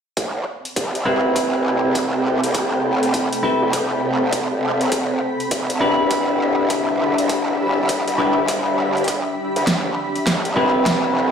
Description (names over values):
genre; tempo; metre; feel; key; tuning
glitch hop; 101 BPM; 4/4; swing 63% on 16ths; A minor; A4 = 436 Hz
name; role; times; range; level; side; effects
growl bass; bass; 0.2-11.3 s; E1 to E2; -21 LUFS; right 1 dB; chorus, tube saturation, high-pass filter
dubstep drum kit; drums; 0.2-11.0 s; hi-hat, snare drum; -24 LUFS; equal; small room ambience
electronic kick drum; drums; 0.2-11.0 s; none; -26 LUFS; right 1 dB; high-pass filter on kick, small room ambience
granular cloud pad; texture; 0.9-11.3 s; C4 to B5; -23 LUFS; equal; built-in reverb, sidechain pumping
clean electric guitar; stabs; 1.1-11.3 s; C4 to B4; -20 LUFS; left 1 dB; sidechain pumping, digital delay
room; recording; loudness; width
moderate plate reverb, RT60 2.6 s; played on a big sound system in a bare room, stone room reverb; -17 LUFS; side -7 dB against mid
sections
0.2-11.3 A section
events
build-up 0.2-11.3; drum fill 9.7-11.3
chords
0.2 Am9; 4.9 Em7; 9.7 Am9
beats
| 0.17 0.76 1.36 1.95 | 2.54 3.14 3.73 4.33 | 4.92 5.52 6.11 6.70 | 7.30 7.89 8.49 9.08 | 9.67 10.27 10.86